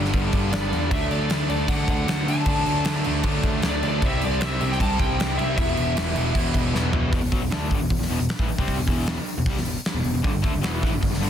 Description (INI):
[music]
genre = hard rock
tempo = 154 BPM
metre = 4/4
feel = straight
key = E minor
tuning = A4 = 439 Hz
[part]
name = crunchy overdriven guitar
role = riff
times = 0.0-11.3 s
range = E2 to D4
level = -29 LUFS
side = left 10 dB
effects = none
[part]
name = overdriven electric guitar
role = riff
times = 0.0-7.1, 10.2-11.3 s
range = E2 to E4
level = -31 LUFS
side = right 1 dB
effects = none
[part]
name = overdriven semi-hollow guitar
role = riff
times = 0.0-11.3 s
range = E2 to D4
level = -29 LUFS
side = right 8 dB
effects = none
[part]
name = overdriven picked electric bass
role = bass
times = 0.0-11.3 s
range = E1 to E2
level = -27 LUFS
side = equal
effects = none
[part]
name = gated 80s drum kit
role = drums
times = 0.0-11.3 s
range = crash cymbal, hi-hat, kick drum, snare drum, toms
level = -25 LUFS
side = equal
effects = none
[part]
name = lead guitar through a small cranked amp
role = melody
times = 0.5-6.7 s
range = D5 to A5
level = -28 LUFS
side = left 1 dB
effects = overdrive, slapback echo
[sound]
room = light reverb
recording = dense, heavily limited modern master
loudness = -20 LUFS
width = side -9 dB against mid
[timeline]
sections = 0.0-7.1 A section; 7.1-11.3 B section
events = drum fill 6.7-7.1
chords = 0.0 G; 0.9 D; 4.0 C; 5.6 Em; 10.3 G5